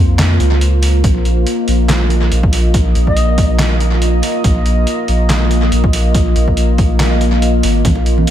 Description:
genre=deep dubstep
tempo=141 BPM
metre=4/4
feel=swing 55% on 16ths, half-time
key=unclear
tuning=A4 = 440 Hz
part: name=deep dark ambient pad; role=sustained chords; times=0.0-8.3 s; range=Bb3 to Eb5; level=-18 LUFS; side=left 1 dB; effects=chorus, built-in reverb
part: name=soft dub sub bass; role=bass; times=0.0-8.3 s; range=Ab1 to F2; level=-13 LUFS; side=equal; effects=none
part: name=trip hop sampler-style drum kit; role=drums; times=0.2-8.3 s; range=handclaps, hi-hat, snare drum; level=-20 LUFS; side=equal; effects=tape echo
part: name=electronic kick drum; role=drums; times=1.0-7.9 s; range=none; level=-15 LUFS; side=equal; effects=overdrive
part: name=bright reedy long shakuhachi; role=melody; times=3.1-3.5 s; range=Eb5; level=-23 LUFS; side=left 2 dB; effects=tape echo
part: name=congas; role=percussion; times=7.8-8.3 s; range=none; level=-18 LUFS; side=right 2 dB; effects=tape echo
room=light reverb, digital ambience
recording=echo-heavy mix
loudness=-11 LUFS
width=side -11 dB against mid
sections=0.0-8.3 A section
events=none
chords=0.0 Bbsus2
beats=0.19 0.61 | 1.04 1.47 1.89 2.32 | 2.74 3.17 3.59 4.02 | 4.44 4.87 5.29 5.72 | 6.15 6.57 7.00 7.42 | 7.85 8.27

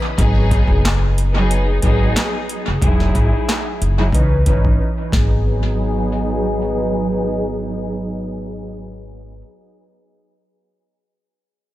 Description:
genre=hip hop, boom-bap hip-hop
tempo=91 BPM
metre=4/4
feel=swing 55% on 16ths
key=G# minor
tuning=A4 = 439 Hz
part: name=warm studio string section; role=accompaniment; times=0.2-8.9 s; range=E3 to B4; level=-21 LUFS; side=equal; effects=high-pass filter, low-pass filter, tape echo
part: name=upright bass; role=bass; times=0.2-9.4 s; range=E1 to C#2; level=-19 LUFS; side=equal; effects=none
part: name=booming analog drum machine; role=drums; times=0.2-5.3 s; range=handclaps, hi-hat, kick drum, snare drum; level=-18 LUFS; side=equal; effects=overdrive, tape echo
room=small room ambience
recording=echo-heavy mix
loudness=-15 LUFS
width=side -15 dB against mid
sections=0.2-5.5 A section; 5.5-8.1 B section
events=break 0.0, 4.8-5.5; filter sweep on string section 0.2-5.5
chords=0.2 G#m7; 2.8 Emaj9; 4.1 C#m9; 5.1 G#m7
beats=| 0.18 0.84 1.50 2.16 | 2.82 3.48 4.13 4.79 | 5.45 6.11 6.77 7.43

